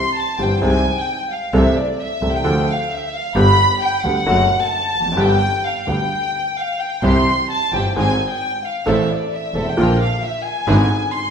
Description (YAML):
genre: tango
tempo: 131 BPM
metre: 4/4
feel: rubato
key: unclear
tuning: A4 = 440 Hz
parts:
  - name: dark chamber violin section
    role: second line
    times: 0.0-11.3 s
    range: D5 to C6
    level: -19 LUFS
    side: left 1 dB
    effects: none
  - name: clear concert grand piano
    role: accompaniment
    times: 0.4-10.9 s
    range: E1 to A4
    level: -20 LUFS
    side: equal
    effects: none
  - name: rich double bass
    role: bass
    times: 0.4-10.9 s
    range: E1 to D2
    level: -20 LUFS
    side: right 1 dB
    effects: none
  - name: warm chamber string section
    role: stabs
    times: 7.0-10.9 s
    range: C4 to Bb4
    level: -29 LUFS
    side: right 1 dB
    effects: none
room: wet recital hall reverb, RT60 1.6 s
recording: minimal, uncompressed stereo recording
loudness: -15 LUFS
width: side -7 dB against mid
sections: 0.0-11.3 A section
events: violin section solo 0.0-11.3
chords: 0.0 C; 0.6 Ab/C; 1.5 Am/C; 2.4 Dm; 3.4 G; 4.3 D/F#; 5.2 G; 7.0 C; 8.0 Ab; 8.9 Am; 9.8 Bb; 10.7 E7/G#